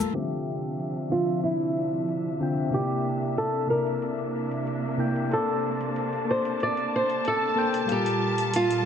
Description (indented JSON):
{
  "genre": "sunset chillout",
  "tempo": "93 BPM",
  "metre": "4/4",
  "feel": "straight",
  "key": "D minor",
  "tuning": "A4 = 441 Hz",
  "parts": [
    { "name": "flamenco guitar", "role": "melody", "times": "0.0-8.9 s", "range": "E4 to D5", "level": "-27 LUFS", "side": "equal", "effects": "ping-pong delay" },
    { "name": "soft electric-piano-like synth keys", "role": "accompaniment", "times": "0.0-8.9 s", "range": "C3 to G5", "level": "-29 LUFS", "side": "left 1 dB", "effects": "chorus, auto-pan, vintage 12-bit sampler grit, low-pass filter, ping-pong delay" },
    { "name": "rich symphonic string section", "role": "sustained chords", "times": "0.0-8.9 s", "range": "Bb2 to A5", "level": "-31 LUFS", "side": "equal", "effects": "none" },
    { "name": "electronic cabasa and hi-hat", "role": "drums", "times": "0.0-8.8 s", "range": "none", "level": "-42 LUFS", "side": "left 1 dB", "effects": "small room ambience" }
  ],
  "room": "moderate scoring stage reverb, RT60 1.9 s, digital ambience",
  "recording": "low-pass filter",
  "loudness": "-24 LUFS",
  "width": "side -8 dB against mid",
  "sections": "0.2-8.9 A section",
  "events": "filter sweep on synth keys 0.2-8.9; filter sweep 0.2-8.9",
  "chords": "0.2 Dm9; 2.7 C9; 5.3 Bbmaj9; 7.9 Gm9",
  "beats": "| 0.15 0.80 1.44 2.09 | 2.73 3.38 4.02 4.67 | 5.31 5.96 6.60 7.25 | 7.89 8.54"
}